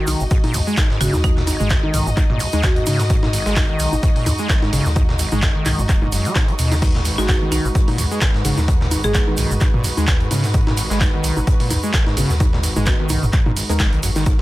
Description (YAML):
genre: acid house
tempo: 129 BPM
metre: 4/4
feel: swing 55% on 16ths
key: G# minor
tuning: A4 = 440 Hz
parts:
  - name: muted chamber string section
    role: sustained chords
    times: 0.0-14.4 s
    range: G#3 to D#5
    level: -28 LUFS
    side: left 1 dB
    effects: sidechain pumping
  - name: acid bass, saw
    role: riff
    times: 0.0-14.4 s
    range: G#1 to G#3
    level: -23 LUFS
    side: equal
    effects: overdrive, analog chorus, sidechain pumping, analog delay
  - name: warm sub bass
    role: bass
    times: 0.1-14.4 s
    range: D#1 to G#2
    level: -22 LUFS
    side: equal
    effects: sidechain pumping
  - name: breakbeat sampler-style drum kit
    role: drums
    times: 0.1-14.4 s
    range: hi-hat, snare drum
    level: -31 LUFS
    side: equal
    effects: high-pass filter on snare, sidechain pumping on hats, high-pass filter on hats, high-pass filter on room
  - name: punchy analog drum machine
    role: drums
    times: 0.1-14.4 s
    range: congas, crash cymbal, handclaps, hi-hat, toms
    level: -23 LUFS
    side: equal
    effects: none
  - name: tube shaker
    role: percussion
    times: 0.1-14.4 s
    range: none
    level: -31 LUFS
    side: right 5 dB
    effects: none
  - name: electronic kick drum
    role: drums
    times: 0.3-14.4 s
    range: none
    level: -17 LUFS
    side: equal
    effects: none
  - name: marimba with hard mallets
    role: melody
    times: 1.0-3.3, 7.2-9.7 s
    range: D#4 to G#4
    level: -27 LUFS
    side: equal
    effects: vintage 12-bit sampler grit, analog delay
  - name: deep mellow chord stab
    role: stabs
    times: 7.3-13.8 s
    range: G#3 to A#4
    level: -30 LUFS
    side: right 1 dB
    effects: ensemble chorus, vintage 12-bit sampler grit, analog delay
room: light reverb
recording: dense, heavily limited modern master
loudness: -15 LUFS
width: side -17 dB against mid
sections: 0.0-14.4 A section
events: none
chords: 0.0 G#m7